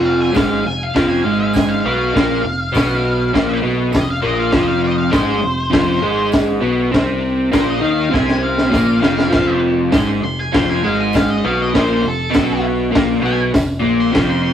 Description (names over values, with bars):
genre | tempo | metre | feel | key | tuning
garage rock duo or trio | 100 BPM | 4/4 | straight | unclear | A4 = 438 Hz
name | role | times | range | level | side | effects
crunchy overdriven guitar | riff | 0.0-14.5 s | F2 to Eb4 | -16 LUFS | equal | none
picked electric bass | bass | 0.0-14.5 s | F1 to Eb2 | -24 LUFS | equal | none
octave-fuzz lead guitar | melody | 0.1-14.5 s | A4 to C6 | -22 LUFS | equal | distortion
tambourine | percussion | 0.3-13.7 s | none | -40 LUFS | right 3 dB | none
crunchy breakbeat drum kit | drums | 0.4-14.3 s | crash cymbal, hi-hat, kick drum, snare drum | -18 LUFS | equal | none
room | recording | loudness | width
moderate small room reverb, RT60 0.6 s | rough rehearsal-room recording, tube saturation | -13 LUFS | side -9 dB against mid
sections
0.0-14.5 A section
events
lead electric guitar solo 0.0-14.5; drum fill 8.1-9.3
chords
0.0 F5